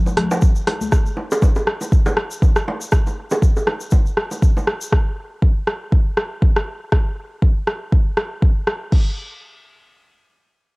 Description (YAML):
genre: afro house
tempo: 120 BPM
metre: 4/4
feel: swing 57% on 16ths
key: none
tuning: none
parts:
  - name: bongos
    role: percussion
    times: 0.1-4.7 s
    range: none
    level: -24 LUFS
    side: right 1 dB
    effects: none
  - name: congas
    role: percussion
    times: 0.1-0.9 s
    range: none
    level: -25 LUFS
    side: left 2 dB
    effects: none
  - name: egg shaker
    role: percussion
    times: 0.1-4.9 s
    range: none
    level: -35 LUFS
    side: left 2 dB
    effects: none
  - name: deep house drum kit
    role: drums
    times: 0.2-9.0 s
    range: crash cymbal, hi-hat, rim click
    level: -22 LUFS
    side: equal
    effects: cassette tape
  - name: electronic kick drum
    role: drums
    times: 0.4-9.0 s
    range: none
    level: -15 LUFS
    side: equal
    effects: cassette tape
room: digital ambience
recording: home recording on cassette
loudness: -16 LUFS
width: side -28 dB against mid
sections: 0.0-8.9 A section; 8.9-10.8 B section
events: none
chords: none